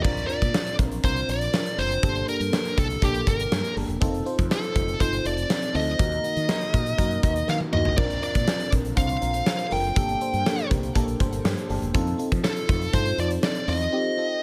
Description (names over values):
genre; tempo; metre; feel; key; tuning
1980s-style pop; 121 BPM; 4/4; straight; unclear; A4 = 440 Hz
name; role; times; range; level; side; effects
high-gain lead guitar; melody; 0.0-14.4 s; G4 to G5; -30 LUFS; equal; distortion
FM electric piano with soft pad layer; accompaniment; 0.0-14.4 s; G2 to C5; -32 LUFS; equal; chorus, phaser
mellow fretless electric bass; bass; 0.0-13.9 s; E1 to F3; -31 LUFS; equal; none
huge arena drum kit; drums; 0.0-13.9 s; crash cymbal, hi-hat, kick drum, snare drum, toms; -28 LUFS; equal; gated reverb
room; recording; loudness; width
light reverb, studio reverb; none; -24 LUFS; mono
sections
0.0-14.4 A section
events
drum fill 7.5-8.0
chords
0.0 Bbadd9; 2.0 Gmadd9; 4.0 F7; 6.0 Ebm; 8.0 Bbadd9; 10.0 Gmadd9; 11.9 F7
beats
| 0.04 0.54 1.04 1.53 | 2.03 2.52 3.02 3.52 | 4.01 4.51 5.00 5.50 | 6.00 6.49 6.99 7.48 | 7.98 8.47 8.97 9.47 | 9.96 10.46 10.95 11.45 | 11.95 12.44 12.94 13.43 | 13.93 14.43